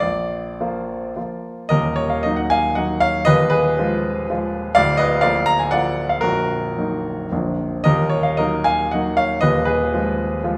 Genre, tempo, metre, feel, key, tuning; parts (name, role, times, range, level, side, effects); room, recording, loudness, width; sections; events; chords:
classical, romantic triple-time dance for piano with dotted rhythms; 100-135 BPM; 3/4; rubato; Eb minor; A4 = 440 Hz
warm grand piano; solo; 0.0-10.6 s; Bb0 to Bb5; -20 LUFS; equal
wet recital hall reverb, RT60 1.4 s; -20 LUFS; mono
0.0-1.7 A section; 1.7-10.6 B section
0.0 Bb; 1.7 Ebm; 3.3 Fm7b5/Eb; 4.8 Bb/D; 6.2 Ebm/Bb; 7.3 Bb; 7.9 Ebm; 9.4 Fm7b5/Eb